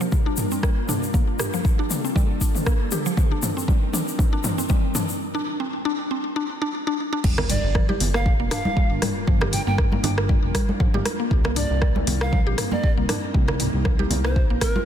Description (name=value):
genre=afro house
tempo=118 BPM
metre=4/4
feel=swing 55% on 16ths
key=G minor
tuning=A4 = 444 Hz
part: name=ethereal airy pad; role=sustained chords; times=0.0-14.9 s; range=G3 to Bb4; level=-31 LUFS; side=left 1 dB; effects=ensemble chorus, built-in reverb, sidechain pumping
part: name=mallet-like synth pluck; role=arpeggios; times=0.0-14.9 s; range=F3 to G4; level=-28 LUFS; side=left 1 dB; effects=chorus, sidechain pumping, ping-pong delay
part: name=egg shaker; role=percussion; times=0.0-5.2 s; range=none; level=-31 LUFS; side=left 6 dB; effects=none
part: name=deep house drum kit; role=drums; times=0.1-14.7 s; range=crash cymbal, hi-hat, rim click, toms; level=-28 LUFS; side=equal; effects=overdrive
part: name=electronic kick drum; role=drums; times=0.1-14.7 s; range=none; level=-21 LUFS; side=equal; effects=none
part: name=smooth synth bass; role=bass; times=7.2-14.6 s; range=F1 to C2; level=-25 LUFS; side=equal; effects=tube saturation, sidechain pumping
part: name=sub drop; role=sound effects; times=7.3-9.3 s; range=none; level=-34 LUFS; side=equal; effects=none
part: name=congas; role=percussion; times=7.4-14.8 s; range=none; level=-30 LUFS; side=right 1 dB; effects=none
part: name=polished pan flute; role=melody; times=7.5-14.8 s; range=Bb4 to G5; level=-30 LUFS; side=right 2 dB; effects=ping-pong delay
room=light reverb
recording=dense, heavily limited modern master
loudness=-20 LUFS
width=side -10 dB against mid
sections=0.0-7.2 A section; 7.2-14.9 B section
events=build-up 0.0-7.2; drum fill 0.0-5.2; break 5.2-7.2; drop 7.2-14.9; impact 7.2-9.3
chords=0.0 Gm7; 3.2 Cm7; 7.2 Gm7; 11.3 Cm7